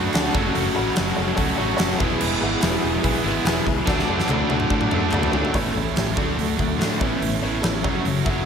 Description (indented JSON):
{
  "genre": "classic rock",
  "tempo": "144 BPM",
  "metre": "4/4",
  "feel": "straight",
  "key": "A major",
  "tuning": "A4 = 440 Hz",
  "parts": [
    { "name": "honky-tonk upright piano", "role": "accompaniment", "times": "0.0-8.4 s", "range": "F#4 to B5", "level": "-30 LUFS", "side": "left 2 dB", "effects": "slapback echo" },
    { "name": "mellow tonewheel organ", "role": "sustained chords", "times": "0.0-8.1 s", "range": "F#3 to A4", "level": "-32 LUFS", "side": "right 1 dB", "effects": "none" },
    { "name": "overdriven electric guitar", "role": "riff", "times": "0.0-8.5 s", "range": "F#2 to F#4", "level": "-26 LUFS", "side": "left 8 dB", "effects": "slapback echo" },
    { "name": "overdriven electric guitar", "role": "riff", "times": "0.0-5.5 s", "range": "E2 to D4", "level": "-28 LUFS", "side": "right 1 dB", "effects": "slapback echo" },
    { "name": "tight distorted guitar", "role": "riff", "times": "0.0-8.5 s", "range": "A2 to F#4", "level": "-26 LUFS", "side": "right 10 dB", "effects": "distortion, slapback echo" },
    { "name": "fingered electric bass", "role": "bass", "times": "0.0-8.5 s", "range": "E1 to A2", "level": "-29 LUFS", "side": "equal", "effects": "none" },
    { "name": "huge arena drum kit", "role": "drums", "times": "0.1-8.4 s", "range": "crash cymbal, hi-hat, kick drum, snare drum, toms", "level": "-24 LUFS", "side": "equal", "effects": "none" },
    { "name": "group handclap", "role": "percussion", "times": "0.1-5.2 s", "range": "none", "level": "barely audible", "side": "none", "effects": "none" }
  ],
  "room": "moderate concert hall reverb, RT60 2.5 s",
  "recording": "big arena sound",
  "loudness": "-19 LUFS",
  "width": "side -7 dB against mid",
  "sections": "0.0-5.5 A section; 5.5-8.5 B section",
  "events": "drum fill 3.9-5.5",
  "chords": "0.4 F#m; 2.0 E; 3.9 D; 5.5 Aadd9; 6.2 D; 7.0 Aadd9; 7.8 F#m",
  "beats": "0.15 | 0.56 0.97 1.39 1.80 | 2.22 2.63 3.05 3.46 | 3.88 4.29 4.71 5.12 | 5.54 5.96 6.37 6.79 | 7.21 7.63 8.05"
}